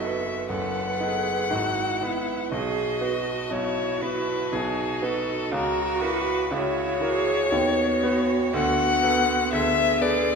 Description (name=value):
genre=classical, slow romantic movement for piano quartet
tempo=60 BPM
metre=3/4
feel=rubato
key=unclear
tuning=A4 = 443 Hz
part: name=rich violin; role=melody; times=0.0-10.4 s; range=G#4 to F#5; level=-26 LUFS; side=left 6 dB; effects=none
part: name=rich cello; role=second line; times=0.0-10.4 s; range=D#4 to A4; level=-29 LUFS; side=right 7 dB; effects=none
part: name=bright grand piano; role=accompaniment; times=0.0-10.4 s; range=F#1 to B4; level=-28 LUFS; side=right 2 dB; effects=none
part: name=rich viola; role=accompaniment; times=0.0-10.4 s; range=B3 to B4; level=-30 LUFS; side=right 2 dB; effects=none
room=wet recital hall reverb, RT60 1.4 s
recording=minimal, uncompressed stereo recording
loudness=-22 LUFS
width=side -5 dB against mid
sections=0.0-10.4 A section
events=none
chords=0.0 B7/F#; 1.5 E/G#; 2.5 B; 5.5 F#7/C#; 7.5 B/D#; 8.5 Bm7/D